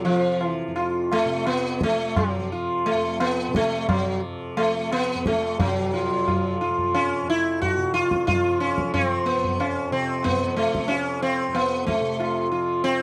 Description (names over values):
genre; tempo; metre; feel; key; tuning
indian classical, Hindustani; 85-94 BPM; 4/4; straight; F raga puriya dhanashri; A4 = 440 Hz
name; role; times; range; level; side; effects
sitar; melody; 0.0-13.0 s; F3 to Gb4; -25 LUFS; equal; none
tanpura; drone; 0.0-13.0 s; F2 to F3; -34 LUFS; equal; none
tabla; percussion; 0.0-13.0 s; none; -31 LUFS; equal; none
room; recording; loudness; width
light reverb; dry, close 1970s-style studio recording; -24 LUFS; mono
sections
0.0-5.6 A section; 5.6-13.0 B section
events
speeding up 0.0-13.0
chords
none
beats
| 0.05 0.76 1.46 2.16 | 2.85 3.55 4.23 4.92 | 5.60 6.28 6.95 7.62 | 8.29 8.95 9.61 10.26 | 10.91 11.56 12.20 12.84